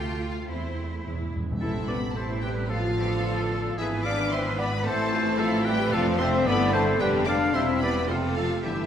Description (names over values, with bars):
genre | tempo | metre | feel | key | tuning
quick classical-period movement for symphony orchestra | 111 BPM | 2/4 | straight | A minor | A4 = 440 Hz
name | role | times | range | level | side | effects
clear studio violin section | melody | 0.0-8.9 s | C5 to D6 | -35 LUFS | left 2 dB | none
clear studio violin section | second line | 0.0-8.9 s | B3 to A4 | -36 LUFS | left 2 dB | none
clear studio viola section | accompaniment | 0.0-8.9 s | C3 to F4 | -33 LUFS | right 2 dB | none
bright studio cello section | bass | 0.0-8.9 s | D4 to B4 | -35 LUFS | right 1 dB | none
rich studio double bass section | bass | 0.0-8.9 s | E1 to E2 | -30 LUFS | right 2 dB | none
timpani | percussion | 1.1-1.6 s | E2 | -34 LUFS | equal | none
bright concert flute | second line | 1.6-8.9 s | F4 to F5 | -32 LUFS | left 1 dB | none
clear oboe | second line | 1.6-8.9 s | F4 to F5 | -34 LUFS | right 1 dB | none
warm clarinet | second line | 1.6-8.9 s | C4 to D5 | -32 LUFS | equal | none
mellow French horn section | sustained chords | 1.6-8.9 s | C3 to D4 | -28 LUFS | left 4 dB | none
room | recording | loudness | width
wet concert hall reverb, RT60 1.8 s | none | -23 LUFS | side -9 dB against mid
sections
0.0-1.6 A section; 1.6-8.9 B section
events
timpani fill 1.1-1.6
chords
0.5 Am/E; 1.1 E; 1.6 Am; 2.7 Bm7b5/A; 3.8 E/G#; 4.9 Am; 5.9 Dm7/F; 6.5 G; 7.0 G7/F; 7.5 C/E; 8.1 F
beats
| 0.49 1.05 | 1.61 2.16 | 2.70 3.25 | 3.79 4.33 | 4.86 5.40 | 5.93 6.47 | 7.01 7.55 | 8.10 8.65